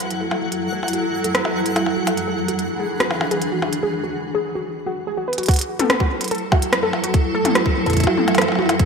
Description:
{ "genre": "IDM", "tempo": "145 BPM", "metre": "4/4", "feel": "straight", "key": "F# minor", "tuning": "A4 = 440 Hz", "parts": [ { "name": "granular cloud pad", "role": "sustained chords", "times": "0.0-8.9 s", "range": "E3 to A4", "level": "-22 LUFS", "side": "equal", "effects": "built-in reverb" }, { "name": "glitchy drum kit", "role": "drums", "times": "0.0-8.9 s", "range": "hi-hat, percussion blips, rim click, toms", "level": "-21 LUFS", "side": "equal", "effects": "overdrive, gated reverb" }, { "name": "twinkling granular texture", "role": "texture", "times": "0.0-3.8 s", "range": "F#4 to F#5", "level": "-30 LUFS", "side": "equal", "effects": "built-in reverb, analog chorus" }, { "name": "warbly dusty pluck", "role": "arpeggios", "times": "0.2-8.6 s", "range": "F#4 to B4", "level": "-25 LUFS", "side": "equal", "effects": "chorus, digital delay" }, { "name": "electronic kick drum", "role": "drums", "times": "5.5-8.9 s", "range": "none", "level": "-17 LUFS", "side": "equal", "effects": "overdrive" } ], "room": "wet lush hall reverb, RT60 2.0 s", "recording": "bright 1980s-style digital production", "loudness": "-18 LUFS", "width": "side -5 dB against mid", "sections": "0.0-5.5 A section; 5.5-8.9 B section", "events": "filter sweep on synth pluck 0.0-5.5; break 3.8-5.5; drum fill 5.3", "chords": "0.0 F#m7; 2.2 E7; 5.5 F#m7" }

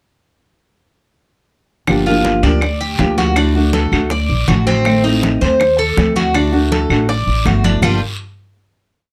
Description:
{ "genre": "latin, Cuban son and guajira", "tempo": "161 BPM", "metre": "4/4", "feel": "straight", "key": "G harmonic minor", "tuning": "A4 = 442 Hz", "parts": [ { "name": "nylon-string guitar", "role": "accompaniment", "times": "1.9-8.0 s", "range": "G2 to G4", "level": "-20 LUFS", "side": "equal", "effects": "none" }, { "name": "upright bass", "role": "bass", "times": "1.9-8.0 s", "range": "G1 to Eb2", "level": "-20 LUFS", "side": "equal", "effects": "none" }, { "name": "bongos", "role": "percussion", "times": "1.9-7.9 s", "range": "none", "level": "-26 LUFS", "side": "equal", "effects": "none" }, { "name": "claves", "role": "percussion", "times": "1.9-7.9 s", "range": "none", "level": "-26 LUFS", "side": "equal", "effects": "none" }, { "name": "congas", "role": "percussion", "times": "1.9-7.9 s", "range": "none", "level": "-25 LUFS", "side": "equal", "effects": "none" }, { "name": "guiro", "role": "percussion", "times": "1.9-7.9 s", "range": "none", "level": "-29 LUFS", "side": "equal", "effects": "none" }, { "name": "Cuban tres", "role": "arpeggios", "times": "2.1-8.0 s", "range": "G3 to D5", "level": "-20 LUFS", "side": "equal", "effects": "none" } ], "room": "light reverb", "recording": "close, detailed microphones", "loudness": "-15 LUFS", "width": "mono", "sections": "1.9-7.8 verse; 7.8-9.1 final chord", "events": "none", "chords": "1.9 Gm7; 3.4 D; 4.9 Adim; 6.3 D; 7.8 G7(no3)" }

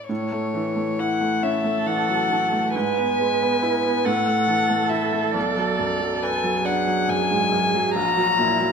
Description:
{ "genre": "classical, slow romantic movement for piano trio", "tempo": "46 BPM (dotted quarters)", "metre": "6/8", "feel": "rubato", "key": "A major", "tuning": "A4 = 439 Hz", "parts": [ { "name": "warm violin", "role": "melody", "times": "0.0-8.7 s", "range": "C#5 to A#5", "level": "-23 LUFS", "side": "left 5 dB", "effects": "none" }, { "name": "clear baby grand piano", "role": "accompaniment", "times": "0.0-8.7 s", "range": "A#1 to B4", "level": "-24 LUFS", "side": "right 1 dB", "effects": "none" }, { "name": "dark cello", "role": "second line", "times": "1.4-8.7 s", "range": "E4 to B4", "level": "-25 LUFS", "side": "right 8 dB", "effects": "none" } ], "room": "moderate recital hall reverb, RT60 1.6 s", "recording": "minimal, uncompressed stereo recording", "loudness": "-19 LUFS", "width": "side -6 dB against mid", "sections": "0.1-8.7 A section", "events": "none", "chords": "0.1 A; 2.7 E/G#; 4.1 A5; 5.4 Bm; 8.0 F#/A#" }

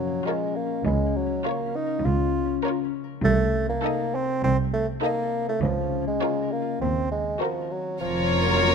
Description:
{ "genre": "cinematic, playful, whimsical film cue", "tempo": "101 BPM", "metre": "4/4", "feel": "straight", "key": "Bb minor", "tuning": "A4 = 440 Hz", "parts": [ { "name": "mellow bassoon", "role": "accompaniment", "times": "0.0-8.7 s", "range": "F3 to F4", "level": "-26 LUFS", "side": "right 2 dB", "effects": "none" }, { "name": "concert harp", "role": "arpeggios", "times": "0.0-8.7 s", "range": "Bb2 to Bb4", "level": "-30 LUFS", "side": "left 13 dB", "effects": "none" }, { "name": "warm chamber cello section", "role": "bass", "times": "0.0-8.7 s", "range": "C2 to F2", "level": "-28 LUFS", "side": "right 2 dB", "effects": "none" }, { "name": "warm symphonic double bass section", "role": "bass", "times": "0.0-8.7 s", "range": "F1 to Eb2", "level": "-29 LUFS", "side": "right 4 dB", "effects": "none" }, { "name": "warm chamber violin section", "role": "melody", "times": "0.3-8.7 s", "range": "C5 to Eb5", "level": "-28 LUFS", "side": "left 4 dB", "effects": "none" }, { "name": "warm symphonic violin section", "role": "second line", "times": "0.3-8.7 s", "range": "A4 to Bb4", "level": "-31 LUFS", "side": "equal", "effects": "none" }, { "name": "warm studio viola section", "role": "accompaniment", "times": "0.3-8.7 s", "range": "Eb4 to Gb4", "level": "-33 LUFS", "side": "right 1 dB", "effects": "none" } ], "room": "light reverb", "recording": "close, detailed microphones", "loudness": "-22 LUFS", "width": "side -6 dB against mid", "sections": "0.0-8.7 A section", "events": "none", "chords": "0.0 Bbm; 0.9 Bbm/Db; 3.2 Adim/C; 5.6 Bbm/Db; 6.8 Cm7b5/Eb; 8.0 Bbm/F" }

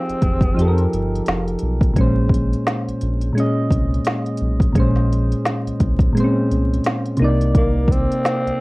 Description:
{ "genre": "lo-fi hip hop", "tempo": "86 BPM", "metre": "4/4", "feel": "swing 58% on 16ths", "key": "Bb dorian", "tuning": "A4 = 440 Hz", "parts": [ { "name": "growling tenor saxophone", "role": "melody", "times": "0.0-0.9, 7.6-8.6 s", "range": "Bb3 to C4", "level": "-24 LUFS", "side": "equal", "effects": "low-pass filter, plate reverb" }, { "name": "soft electric-piano-like synth keys", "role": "accompaniment", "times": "0.0-8.6 s", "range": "Bb2 to Eb5", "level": "-20 LUFS", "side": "equal", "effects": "chorus, cassette tape, low-pass filter" }, { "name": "round analog bass", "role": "bass", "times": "0.1-8.5 s", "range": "F1 to F2", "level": "-21 LUFS", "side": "equal", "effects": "none" }, { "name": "organic electronic drum kit", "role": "drums", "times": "0.1-8.6 s", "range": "hi-hat, kick drum, snare drum", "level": "-19 LUFS", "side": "equal", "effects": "overdrive" } ], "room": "moderate studio reverb, RT60 0.6 s", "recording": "worn, warbling old tape, cassette tape, vinyl crackle, warbly pitch drift", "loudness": "-16 LUFS", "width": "side -22 dB against mid", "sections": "0.0-8.6 A section", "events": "none", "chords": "0.0 Fm9; 2.0 Bbm9; 7.2 Cm9" }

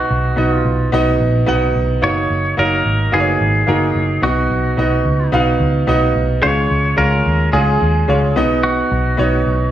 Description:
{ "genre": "piano-driven pop", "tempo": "109 BPM", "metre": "4/4", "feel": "straight", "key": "unclear", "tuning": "A4 = 444 Hz", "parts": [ { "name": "twangy electric guitar", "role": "melody", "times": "0.0-9.7 s", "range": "F#4 to C#5", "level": "-19 LUFS", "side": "right 1 dB", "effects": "plate reverb, tape echo" }, { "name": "bright grand piano", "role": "accompaniment", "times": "0.0-9.7 s", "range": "B2 to F#5", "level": "-17 LUFS", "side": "right 1 dB", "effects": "plate reverb" }, { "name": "vintage muted picked electric bass", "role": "bass", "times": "0.1-9.7 s", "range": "F#1 to D#2", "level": "-17 LUFS", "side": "equal", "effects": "none" } ], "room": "light reverb", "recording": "studio reverb", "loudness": "-13 LUFS", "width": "side -12 dB against mid", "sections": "0.0-9.7 A section", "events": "none", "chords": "0.0 B; 2.0 F#6; 4.2 B; 6.4 C#; 8.4 B" }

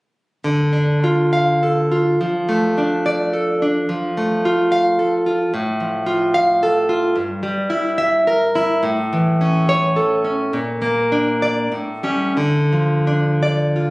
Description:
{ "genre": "romantic piece for solo classical guitar", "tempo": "85-112 BPM", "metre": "3/4", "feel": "rubato", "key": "D minor", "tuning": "A4 = 440 Hz", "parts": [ { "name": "nylon-string guitar", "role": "solo", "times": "0.4-13.9 s", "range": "G2 to F5", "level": "-15 LUFS", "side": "equal", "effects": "none" } ], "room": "light reverb", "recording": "recorded on a phone in the room, studio reverb", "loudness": "-16 LUFS", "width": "side -22 dB against mid", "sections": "0.4-13.9 A section", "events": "none", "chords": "0.4 Dm; 2.2 Dm/F; 3.9 F; 5.5 F/A; 7.1 Edim/G; 8.8 A; 10.5 Bb; 11.7 A7; 12.4 Dm" }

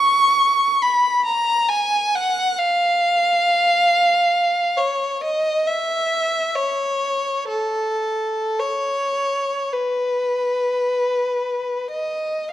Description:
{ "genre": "classical, free, expressive piece for unaccompanied violin", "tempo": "free time", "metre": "none", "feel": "none", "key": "unclear", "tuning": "A4 = 440 Hz", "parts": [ { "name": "rich violin", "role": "solo", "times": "0.0-12.5 s", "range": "A4 to C#6", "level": "-17 LUFS", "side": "equal", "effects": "none" } ], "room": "moderate recital hall reverb, RT60 1.7 s", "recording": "dark, warm production", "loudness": "-18 LUFS", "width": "side -12 dB against mid", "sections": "0.0-12.5 A section", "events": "none", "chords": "none" }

